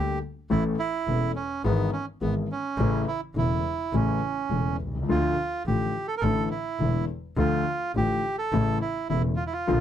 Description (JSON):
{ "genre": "tango", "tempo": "105 BPM", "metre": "4/4", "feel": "rubato", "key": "unclear", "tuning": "A4 = 440 Hz", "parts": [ { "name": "bandoneon", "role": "melody", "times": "0.0-9.8 s", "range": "B3 to Bb4", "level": "-29 LUFS", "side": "right 4 dB", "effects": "none" }, { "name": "warm concert grand piano", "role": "accompaniment", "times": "0.0-9.8 s", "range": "E1 to A4", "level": "-27 LUFS", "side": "left 3 dB", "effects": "none" }, { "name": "bright double bass", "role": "bass", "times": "0.0-9.8 s", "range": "E1 to D2", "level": "-28 LUFS", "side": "right 1 dB", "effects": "none" } ], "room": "little or no reverb", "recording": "close, detailed microphones", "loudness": "-24 LUFS", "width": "side -10 dB against mid", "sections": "0.0-9.8 A section", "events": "none", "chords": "0.5 A; 1.6 E/G#; 2.8 A; 5.1 Dm; 6.2 Asus4; 7.4 Dm; 8.5 A" }